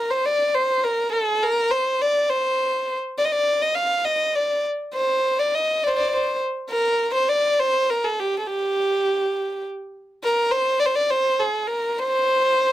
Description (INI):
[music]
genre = arabic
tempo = 68 BPM (dotted quarters)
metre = 6/8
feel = straight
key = unclear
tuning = A4 = 441 Hz
[part]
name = dark violin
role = solo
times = 0.0-12.7 s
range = G4 to F5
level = -19 LUFS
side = equal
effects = none
[sound]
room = light reverb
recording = none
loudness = -19 LUFS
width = side -13 dB against mid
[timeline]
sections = 0.0-10.2 A section; 10.2-12.7 B section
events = none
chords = none